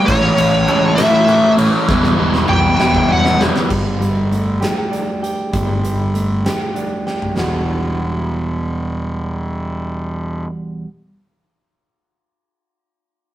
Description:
quiet-loud alternative rock; 65 BPM (dotted quarters); 6/8; straight; E minor; A4 = 440 Hz
smooth overdriven lead guitar; melody; 0.0-3.4 s; C#5 to G5; -15 LUFS; right 1 dB
overdriven semi-hollow guitar; riff; 0.0-3.7 s; A2 to E4; -15 LUFS; equal; phaser
fuzz fingered electric bass; bass; 0.1-10.4 s; E1 to A2; -19 LUFS; equal; overdrive
huge arena drum kit; drums; 0.1-7.5 s; crash cymbal, hi-hat, kick drum, ride cymbal, snare drum, splash cymbal, toms; -22 LUFS; left 1 dB
clean electric guitar; arpeggios; 3.7-10.9 s; E2 to G4; -22 LUFS; right 2 dB
light reverb; rough rehearsal-room recording; -14 LUFS; side -13 dB against mid
0.0-3.7 A section; 3.7-7.4 B section; 7.4-11.1 C section
lead electric guitar solo 0.0-3.7; drum fill 1.9-3.7, 7.1-7.4
0.1 A; 1.9 Em; 3.7 Gsus2; 7.4 Emadd9
| 0.08 0.98 | 1.89 2.80 | 3.71 4.62 | 5.54 6.46 | 7.38 8.30 | 9.22 10.15

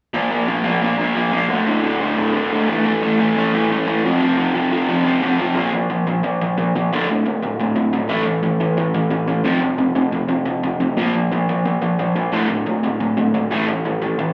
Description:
punk; 177 BPM; 4/4; straight; A4 = 440 Hz
raw garage guitar; solo; 0.1-14.3 s; D2 to Bb3; -19 LUFS; equal; overdrive, slapback echo
light reverb; live gig heard through the venue's PA, club reverb; -19 LUFS; mono
0.1-5.6 A section; 5.6-14.3 B section
0.1 Bb5; 1.5 D5; 2.7 A5; 4.0 F5; 5.6 Bb5; 6.9 D5; 8.1 A5; 9.4 F5; 11.0 Bb5; 12.3 D5; 13.5 A5
| 0.14 0.48 0.81 1.15 | 1.49 1.83 2.17 2.51 | 2.85 3.19 3.53 3.87 | 4.20 4.54 4.88 5.22 | 5.56 5.89 6.23 6.57 | 6.91 7.25 7.59 7.92 | 8.26 8.60 8.94 9.28 | 9.62 9.96 10.29 10.63 | 10.97 11.31 11.65 11.99 | 12.33 12.66 13.00 13.34 | 13.68 14.02

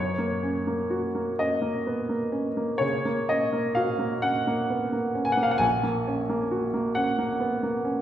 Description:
classical, romantic nocturne for solo piano; 40-45 BPM (dotted quarters); 12/8; rubato; F# major; A4 = 440 Hz
clear baby grand piano; solo; 0.0-8.0 s; A#1 to G#5; -24 LUFS; equal
wet recital hall reverb, RT60 1.5 s; heard from further back in the room; -24 LUFS; side -11 dB against mid
0.0-8.0 A section
0.0 F#; 5.6 F#/A#
1.40 2.83 4.24 | 5.62 6.97

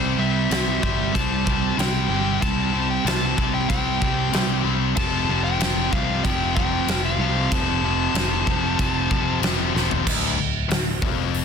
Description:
hard rock; 94 BPM; 4/4; straight; A4 = 436 Hz
smooth overdriven lead guitar; melody; 0.0-9.4 s; C5 to A5; -27 LUFS; left 1 dB; slapback echo
cranked stack guitar; riff; 0.0-10.1 s; F2 to C4; -27 LUFS; right 14 dB; overdrive, spring reverb
tight distorted guitar; riff; 0.0-11.4 s; D2 to C4; -25 LUFS; left 14 dB; distortion
picked electric bass; bass; 0.0-11.4 s; D1 to C2; -26 LUFS; equal
huge arena drum kit; drums; 0.5-11.4 s; crash cymbal, hi-hat, kick drum, snare drum, toms; -25 LUFS; equal
studio reverb; dense, heavily limited modern master; -19 LUFS; side -6 dB against mid
0.0-10.1 A section; 10.1-11.4 B section
drum fill 9.7-10.1
0.0 C5; 5.0 F; 10.1 Dm
0.51 1.14 1.78 | 2.42 3.06 3.69 4.33 | 4.97 5.61 6.24 6.88 | 7.52 8.15 8.79 9.43 | 10.06 10.70 11.33

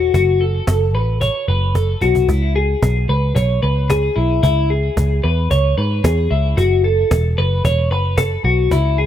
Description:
jangly indie pop; 112 BPM; 4/4; straight; A4 = 440 Hz
twelve-string electric guitar; arpeggios; 0.0-9.1 s; E4 to C#5; -18 LUFS; left 2 dB; lush chorus, digital delay
vintage muted picked electric bass; bass; 0.0-9.1 s; E1 to G#2; -16 LUFS; equal
cajon; drums; 0.1-8.8 s; -20 LUFS; equal
small room ambience; rough home demo mix; -14 LUFS; side -10 dB against mid
0.0-9.1 A section
drum fill 1.8-2.3
0.0 F#m; 2.3 C#m; 6.6 F#m
| 0.14 0.68 1.21 1.75 | 2.29 2.82 3.36 3.90 | 4.43 4.97 5.50 6.04 | 6.57 7.11 7.64 8.18 | 8.71

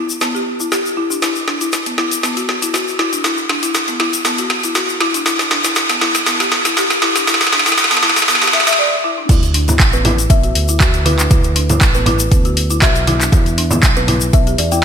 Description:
afro house; 119 BPM; 4/4; swing 54% on 16ths; A4 = 440 Hz
folk marimba with medium mallets; arpeggios; 0.0-14.8 s; B3 to E5; -20 LUFS; left 2 dB; sidechain pumping, low-pass filter, ping-pong delay
tube shaker; percussion; 0.1-14.8 s; -25 LUFS; left 5 dB
afro-pop drum kit; drums; 0.2-14.8 s; crash cymbal, handclaps, hi-hat, snare drum; -15 LUFS; equal; high-pass filter on snare, studio reverb, high-pass filter on hats, high-pass filter on cymbals, gated reverb
smooth synth bass; bass; 9.3-14.8 s; A1 to E2; -17 LUFS; right 1 dB; sidechain pumping
electronic kick drum; drums; 9.3-14.4 s; -13 LUFS; right 1 dB; overdrive, studio reverb
congas; percussion; 9.3-14.2 s; -21 LUFS; right 2 dB
kalimba; melody; 9.9-14.8 s; B4 to G5; -23 LUFS; left 2 dB; ping-pong delay
moderate lush hall reverb, RT60 1.9 s, studio ambience; bright 1980s-style digital production, high-pass filter; -12 LUFS; side -7 dB against mid
0.0-9.3 A section; 9.3-14.8 B section
build-up 0.0-9.3; drum fill 0.0-8.8; break 8.8-9.3; drop 9.3-14.8
0.0 Em; 1.2 D6; 5.3 Em; 9.3 D5; 13.3 E5
0.22 0.72 | 1.23 1.73 2.23 2.74 | 3.24 3.75 4.25 4.75 | 5.26 5.76 6.27 6.77 | 7.28 7.78 8.29 8.79 | 9.29 9.80 10.30 10.81 | 11.31 11.81 12.32 12.82 | 13.33 13.83 14.34 14.84

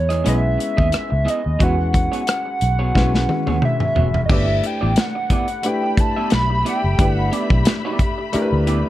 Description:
lush 1970s-style soul; 89 BPM; 4/4; swing 54% on 16ths; A4 = 440 Hz
hollow square lead; melody; 0.0-7.3 s; C#5 to B5; -23 LUFS; right 1 dB; chorus
warm concert grand piano; accompaniment; 0.0-8.9 s; G#3 to B4; -25 LUFS; left 1 dB
vintage muted fingered electric bass; bass; 0.0-8.8 s; E1 to E2; -19 LUFS; equal
electric guitar through a small old amp; riff; 0.1-8.9 s; B3 to E5; -27 LUFS; right 5 dB
modern studio drum kit; drums; 0.1-8.8 s; crash cymbal, hi-hat, kick drum, rim click, snare drum, toms; -19 LUFS; equal
dark studio string section; second line; 5.6-8.9 s; G4 to B5; -28 LUFS; left 3 dB
little or no reverb; dark, warm production; -16 LUFS; side -14 dB against mid
0.0-4.3 A section; 4.3-8.9 B section
drum fill 3.0-4.3
0.0 C#m9; 1.6 E69; 4.3 G6
0.26 0.93 | 1.61 2.28 2.95 3.63 | 4.30 4.97 5.64 6.32 | 6.99 7.66 8.34

